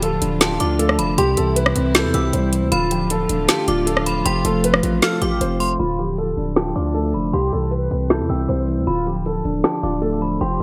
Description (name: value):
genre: hip hop, trap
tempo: 156 BPM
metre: 4/4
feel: half-time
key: D dorian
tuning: A4 = 440 Hz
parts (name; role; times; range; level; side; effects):
- dark grand piano; melody; 0.0-10.6 s; F4 to C5; -26 LUFS; equal; analog chorus
- mellow tine electric piano; accompaniment; 0.0-10.6 s; C3 to F5; -25 LUFS; equal; lush chorus
- warm chamber string section; sustained chords; 0.0-5.8 s; C3 to F4; -32 LUFS; equal; none
- distorted 808-style bass; bass; 0.0-10.6 s; D1 to E2; -26 LUFS; equal; distortion
- trap drum kit; drums; 0.0-10.6 s; hi-hat, rim click, snare drum; -22 LUFS; equal; overdrive
- metallic FM bell; second line; 0.4-10.6 s; A5 to G6; -30 LUFS; equal; chorus, delay
room: moderate lush hall reverb, RT60 1.7 s, digital ambience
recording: bright 1980s-style digital production, low-pass filter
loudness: -19 LUFS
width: mono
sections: 0.0-5.8 A section; 5.8-10.6 B section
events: none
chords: 0.0 Dm; 1.2 C; 2.7 Dm; 4.3 F; 5.8 Dm; 7.3 C; 8.9 Dm